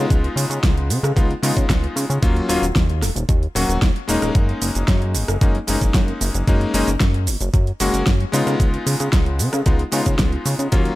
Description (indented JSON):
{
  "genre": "nu-disco, nu disco",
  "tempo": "113 BPM",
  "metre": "4/4",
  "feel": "straight",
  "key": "unclear",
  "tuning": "A4 = 440 Hz",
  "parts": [
    { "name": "bright electric grand piano", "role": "accompaniment", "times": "0.0-11.0 s", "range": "F#3 to F#4", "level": "-23 LUFS", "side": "left 2 dB", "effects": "sidechain pumping, ping-pong delay" },
    { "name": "chorused synth bass", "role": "bass", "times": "0.0-10.9 s", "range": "D#1 to C#3", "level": "-21 LUFS", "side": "equal", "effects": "sidechain pumping" },
    { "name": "electronic kick drum", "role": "drums", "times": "0.1-10.8 s", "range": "none", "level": "-17 LUFS", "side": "equal", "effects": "overdrive" },
    { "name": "pop drum kit", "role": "drums", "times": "0.1-11.0 s", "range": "hi-hat, rim click, shaker, snare drum", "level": "-24 LUFS", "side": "right 1 dB", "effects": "overdrive" }
  ],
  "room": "little or no reverb",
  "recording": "none",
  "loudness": "-16 LUFS",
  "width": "side -17 dB against mid",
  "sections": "0.0-11.0 A section",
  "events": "none",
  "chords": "0.0 C#7; 2.2 D#m7; 4.4 F#6; 8.3 C#7",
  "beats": "| 0.10 0.64 1.17 1.70 | 2.23 2.76 3.29 3.82 | 4.35 4.88 5.41 5.95 | 6.48 7.01 7.54 8.07 | 8.60 9.13 9.66 10.19 | 10.72"
}